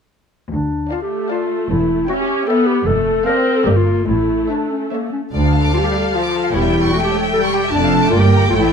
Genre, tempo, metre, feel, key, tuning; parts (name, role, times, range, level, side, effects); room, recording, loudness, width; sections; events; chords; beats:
quick classical-period movement for symphony orchestra; 141-156 BPM; 3/4; rubato; D minor; A4 = 440 Hz
warm clarinet; second line; 0.5-8.7 s; Bb3 to Bb4; -19 LUFS; left 1 dB
rich chamber cello section; bass; 0.5-8.7 s; D2 to A2; -21 LUFS; right 1 dB
rich studio double bass section; bass; 0.5-8.7 s; E1 to D2; -20 LUFS; right 2 dB
warm studio violin section; melody; 0.9-8.7 s; D5 to A5; -26 LUFS; equal
warm studio violin section; second line; 0.9-8.7 s; A4 to D6; -23 LUFS; left 2 dB
rich studio viola section; accompaniment; 0.9-8.7 s; F3 to C#4; -20 LUFS; left 1 dB
moderate stone room reverb, RT60 1.0 s; dark, warm production; -14 LUFS; side -6 dB against mid
0.5-8.7 A section
0.5 Dm; 1.7 C#dim/E; 2.9 Dm/F; 3.7 Gm; 4.1 A; 5.3 Dm; 6.5 C#dim/E; 7.7 Dm/F; 8.1 Gm
| 0.52 0.92 1.31 | 1.70 2.08 2.47 | 2.86 3.26 3.66 | 4.08 4.50 4.92 | 5.33 5.74 6.14 | 6.53 6.93 7.33 | 7.72 8.11 8.50